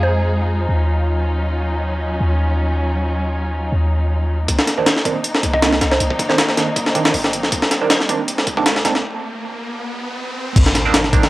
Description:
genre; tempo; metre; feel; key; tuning
drum and bass, jungle; 158 BPM; 4/4; swing 54% on 16ths; C minor; A4 = 441 Hz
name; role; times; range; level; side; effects
mallet-like synth pluck; melody; 0.0-0.3, 5.5-6.6 s; C5 to Eb5; -25 LUFS; equal; chorus, dub echo
dark chamber string section; sustained chords; 0.0-11.3 s; Eb3 to Bb4; -24 LUFS; equal; vintage 12-bit sampler grit
warm 808-style bass; bass; 0.0-10.7 s; G1 to F2; -19 LUFS; equal; none
breakbeat sampler-style drum kit; drums; 4.5-11.3 s; crash cymbal, hi-hat, kick drum, snare drum; -16 LUFS; equal; high-pass filter on kick, studio reverb, cassette tape, high-pass filter on hats, high-pass filter on snare, high-pass filter on cymbals
riser and impact; sound effects; 6.5-11.3 s; none; -27 LUFS; equal; none
band-passed chord stab; stabs; 4.8-11.2 s; Eb3 to D4; -22 LUFS; right 5 dB; phaser, dub echo
room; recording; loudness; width
light reverb; home recording on cassette, high-pass filter; -15 LUFS; side -18 dB against mid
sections
0.0-4.5 A section; 4.5-10.6 B section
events
build-up 4.5-10.6; riser 6.5-10.6; break 9.0-10.6; impact 10.6-11.3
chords
0.0 Fm7; 0.7 Ebm9; 4.5 Cm9; 9.0 N.C.; 10.6 Cm9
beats
0.31 0.69 1.07 | 1.45 1.83 2.21 2.58 | 2.96 3.35 3.72 4.10 | 4.48 4.86 5.24 5.62 | 6.00 6.38 6.76 7.14 | 7.52 7.90 8.28 8.66 | 9.04 9.42 9.80 10.18 | 10.56 10.94

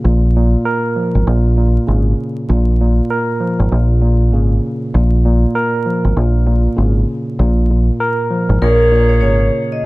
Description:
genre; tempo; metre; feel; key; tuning
hip hop; 98 BPM; 4/4; swing 60% on 16ths; Bb minor; A4 = 440 Hz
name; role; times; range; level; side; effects
tine electric piano; accompaniment; 0.0-9.9 s; Bb2 to Bb4; -17 LUFS; equal; medium stereo tremolo, cassette tape, high-pass filter, low-pass filter
deep dub fingered electric bass; bass; 0.0-9.5 s; Ab1 to Bb1; -12 LUFS; equal; none
vibraphone with medium hard mallets; melody; 8.6-9.9 s; Bb4 to Eb5; -14 LUFS; right 1 dB; high-pass filter, low-pass filter, analog delay
mellow saxophone section; stabs; 8.6-9.5 s; Bb3 to Db5; -22 LUFS; left 1 dB; high-pass filter, low-pass filter, analog delay
room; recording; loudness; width
light reverb, studio reverb; echo-heavy mix, vinyl crackle; -12 LUFS; side -21 dB against mid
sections
0.0-8.6 A section; 8.6-9.9 B section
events
none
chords
0.0 Fsus4; 1.3 Absus24; 2.5 Fsus4; 3.7 Bbm7; 4.9 Fsus4; 6.2 Absus24; 7.4 Fsus4; 8.6 Bbm7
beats
0.04 0.65 | 1.27 1.88 2.49 3.10 | 3.72 4.33 4.94 5.55 | 6.17 6.78 7.39 8.00 | 8.61 9.23 9.84

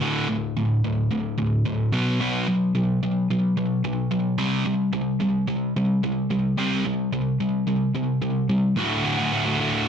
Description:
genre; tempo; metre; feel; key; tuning
rock; 110 BPM; 4/4; straight; D mixolydian; A4 = 440 Hz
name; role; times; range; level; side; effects
sludgy distorted guitar; solo; 0.0-9.9 s; D2 to F#4; -21 LUFS; equal; overdrive, slapback echo
room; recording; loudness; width
moderate studio reverb, RT60 0.6 s; none; -21 LUFS; side -8 dB against mid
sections
0.0-8.8 A section; 8.8-9.9 B section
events
none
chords
0.0 D5; 1.9 B5; 4.4 C5; 8.8 D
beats
| 0.01 0.56 1.11 1.66 | 2.21 2.75 3.30 3.85 | 4.39 4.94 5.49 6.04 | 6.58 7.13 7.68 8.23 | 8.77 9.32 9.86

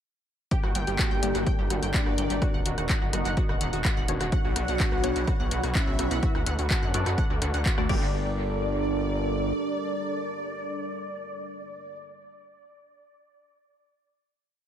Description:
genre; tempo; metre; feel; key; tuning
melodic techno; 126 BPM; 4/4; straight; G harmonic minor; A4 = 438 Hz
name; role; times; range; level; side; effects
mellow synth brass; melody; 0.5-12.0 s; Bb3 to G4; -33 LUFS; right 1 dB; chorus, sidechain pumping, dub echo
soft supersaw; second line; 0.5-12.0 s; D5 to G5; -36 LUFS; right 1 dB; sidechain pumping, dub echo
dark analog pad; sustained chords; 0.7-12.0 s; G3 to Gb5; -35 LUFS; left 1 dB; chorus, sidechain pumping
analog pluck; arpeggios; 0.5-8.3 s; F#4 to G6; -34 LUFS; right 1 dB; chorus, sidechain pumping, tape echo
electronic kick drum; drums; 0.5-8.0 s; none; -26 LUFS; equal; none
punchy analog drum machine; drums; 0.5-8.0 s; crash cymbal, handclaps, hi-hat, rim click; -33 LUFS; left 1 dB; dub echo
gritty driven synth bass; bass; 0.6-9.5 s; Eb1 to F#2; -30 LUFS; equal; tube saturation, sidechain pumping
filtered dub chord stab; stabs; 1.2-12.0 s; A3 to Eb5; -37 LUFS; left 4 dB; phaser, sidechain pumping, dub echo
room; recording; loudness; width
light reverb; echo-heavy mix; -24 LUFS; side -10 dB against mid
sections
0.5-8.1 drop; 8.1-11.9 final hit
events
drop 0.5-8.1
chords
0.5 Gm; 2.4 Ebm; 4.3 Bmadd9; 6.2 D; 7.9 Gm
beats
| 0.51 0.99 1.47 1.94 | 2.42 2.89 3.37 3.85 | 4.32 4.80 5.28 5.75 | 6.23 6.70 7.18 7.66 | 8.13 8.61 9.09 9.56 | 10.04 10.51 10.99 11.46

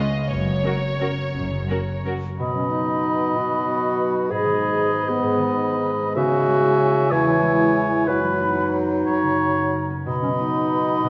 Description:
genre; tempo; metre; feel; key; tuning
classical, orchestral ballroom waltz; 164-210 BPM; 3/4; rubato; B major; A4 = 442 Hz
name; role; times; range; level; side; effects
muted studio violin section; melody; 0.0-2.1 s; C#5 to D#5; -32 LUFS; equal; none
muted studio violin section; second line; 0.0-2.1 s; F#4 to A#4; -34 LUFS; equal; none
muted studio viola section; accompaniment; 0.0-2.1 s; F#3 to C#4; -34 LUFS; equal; none
concert harp; arpeggios; 0.0-11.1 s; E2 to C#5; -29 LUFS; equal; none
muted chamber cello section; bass; 0.3-1.6 s; F#2; -34 LUFS; equal; none
muted studio double bass section; bass; 0.3-1.6 s; F#1; -34 LUFS; equal; none
mellow hollow silver concert flute; second line; 2.4-11.1 s; G#5 to B5; -29 LUFS; equal; none
warm oboe; second line; 2.4-11.1 s; B4 to E5; -28 LUFS; equal; none
dark bassoon; accompaniment; 2.4-11.1 s; G#2 to F#3; -27 LUFS; equal; none
mellow clarinet; second line; 2.5-11.1 s; B3 to G#4; -25 LUFS; equal; none
room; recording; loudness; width
wet concert hall reverb, RT60 2.4 s; nothing above 7.6 kHz; -21 LUFS; mono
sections
0.0-2.4 A section; 2.4-11.1 A section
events
none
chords
0.3 F#; 2.4 B; 4.3 G#m; 6.2 C#m; 7.1 C#m/E; 8.1 B/F#; 9.1 F#; 10.1 B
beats
| 0.31 0.65 1.01 | 1.35 1.70 2.06 | 2.39 2.72 3.05 | 3.36 3.68 4.00 | 4.30 4.61 4.93 | 5.23 5.54 5.86 | 6.17 6.47 6.80 | 7.11 7.42 7.76 | 8.08 8.41 8.75 | 9.07 9.40 9.75 | 10.07 10.39 10.73 | 11.04

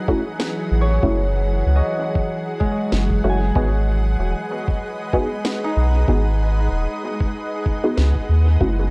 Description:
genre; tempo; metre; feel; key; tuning
ambient dub; 95 BPM; 4/4; swing 56% on 16ths; unclear; A4 = 443 Hz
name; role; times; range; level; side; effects
soft additive organ-like pad; sustained chords; 0.0-8.9 s; E3 to F#5; -29 LUFS; equal; ensemble chorus, built-in reverb
Celtic harp; arpeggios; 0.0-8.3 s; G#3 to G#5; -30 LUFS; equal; dub echo
filtered dub chord stab; stabs; 0.1-8.8 s; A3 to G#4; -29 LUFS; equal; lush chorus, dub echo
electronic kick drum; drums; 0.1-8.8 s; none; -24 LUFS; equal; studio ambience
electronic snare drum; drums; 0.4-8.1 s; none; -30 LUFS; equal; studio ambience, dub echo
soft dub sub bass; bass; 0.7-8.9 s; D#1 to D#2; -20 LUFS; equal; none
room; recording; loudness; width
light reverb, digital ambience; none; -20 LUFS; mono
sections
0.0-8.9 A section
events
none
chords
0.0 F#m7; 3.6 G#m7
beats
0.40 | 1.03 1.66 2.29 2.92 | 3.56 4.19 4.82 5.45 | 6.08 6.71 7.34 7.98 | 8.61

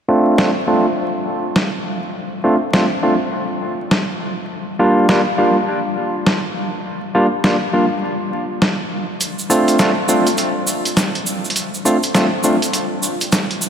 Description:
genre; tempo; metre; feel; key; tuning
glitch hop; 102 BPM; 4/4; swing 62% on 16ths; unclear; A4 = 442 Hz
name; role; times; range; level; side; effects
barky tine electric piano; stabs; 0.1-12.6 s; G3 to F4; -17 LUFS; equal; low-pass filter, diffuse ambient delay
boom bap sampler-style drum kit; drums; 0.4-13.6 s; hi-hat, snare drum; -20 LUFS; equal; none
tube shaker; percussion; 9.2-13.7 s; none; -24 LUFS; right 3 dB; none
room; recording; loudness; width
wet cathedral reverb, RT60 4.5 s; dreamy mix soaked in reverb, vinyl crackle; -15 LUFS; side -8 dB against mid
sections
0.0-13.7 A section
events
filter sweep on tine electric piano 0.0-13.7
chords
0.0 Dm7; 4.5 Gm7; 9.2 Dm7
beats
0.38 0.97 1.56 | 2.15 2.74 3.32 3.91 | 4.50 5.09 5.68 6.27 | 6.85 7.44 8.03 8.62 | 9.21 9.79 10.38 10.97 | 11.56 12.15 12.74 13.32

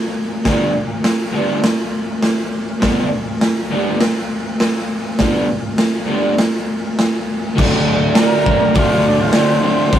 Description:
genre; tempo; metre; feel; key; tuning
garage rock duo or trio; 101 BPM; 4/4; straight; G major; A4 = 442 Hz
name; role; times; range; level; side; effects
crunchy overdriven guitar; riff; 0.4-10.0 s; F2 to D4; -16 LUFS; equal; none
raw garage drum kit; drums; 0.5-10.0 s; crash cymbal, hi-hat, kick drum, snare drum; -16 LUFS; equal; none
overdriven combo organ; melody; 8.2-10.0 s; C4 to Bb4; -20 LUFS; right 1 dB; none
room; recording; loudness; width
light reverb; rough rehearsal-room recording; -14 LUFS; side -10 dB against mid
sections
0.0-7.6 A section; 7.6-10.0 B section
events
transistor combo organ solo 7.6-10.0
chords
0.0 G; 7.6 D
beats
| 0.47 1.06 1.65 2.24 | 2.83 3.43 4.02 4.61 | 5.21 5.80 6.39 6.98 | 7.57 8.16 8.75 9.34 | 9.93

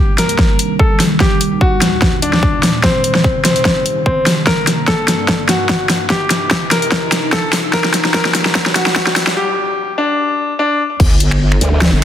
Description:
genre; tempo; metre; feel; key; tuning
heavy wobble dubstep; 147 BPM; 4/4; swing 54% on 16ths, half-time; unclear; A4 = 440 Hz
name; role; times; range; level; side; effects
clear concert grand piano; melody; 0.0-10.8 s; C4 to Bb4; -17 LUFS; left 2 dB; low-pass filter, digital delay
evolving wavetable pad; sustained chords; 0.1-12.0 s; C2 to G5; -21 LUFS; right 1 dB; phaser, built-in reverb, sidechain pumping
riser and sub drop; sound effects; 1.5-12.0 s; none; -27 LUFS; equal; none
dubstep drum kit; drums; 0.2-11.9 s; crash cymbal, finger snaps, hi-hat, snare drum; -15 LUFS; equal; none
electronic kick drum; drums; 0.4-11.1 s; none; -16 LUFS; equal; overdrive
wobble bass; bass; 11.0-12.0 s; G1; -13 LUFS; equal; chorus, overdrive
formant-sweep wobble bass; bass; 11.6-11.9 s; D2; -12 LUFS; equal; chorus, overdrive
room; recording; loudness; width
moderate plate reverb, RT60 2.2 s; dense, heavily limited modern master, high-pass filter; -12 LUFS; side -10 dB against mid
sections
0.0-11.0 A section; 11.0-12.0 B section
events
build-up 0.0-11.0; drum fill 0.0-9.4; filter sweep on ambient pad 0.0-11.0; filter sweep 0.0-11.0; break 9.4-11.0; drop 11.0-12.0; impact 11.0-12.0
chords
0.0 Cm; 1.2 Eb; 2.8 Cm; 4.5 Gm; 6.1 Cm; 7.7 Eb; 9.4 N.C.; 11.0 Gm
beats
0.39 0.80 | 1.20 1.61 2.02 2.43 | 2.84 3.24 3.65 4.06 | 4.47 4.88 5.29 5.69 | 6.10 6.51 6.92 7.33 | 7.73 8.14 8.55 8.96 | 9.37 9.78 10.18 10.59 | 11.00 11.41 11.82

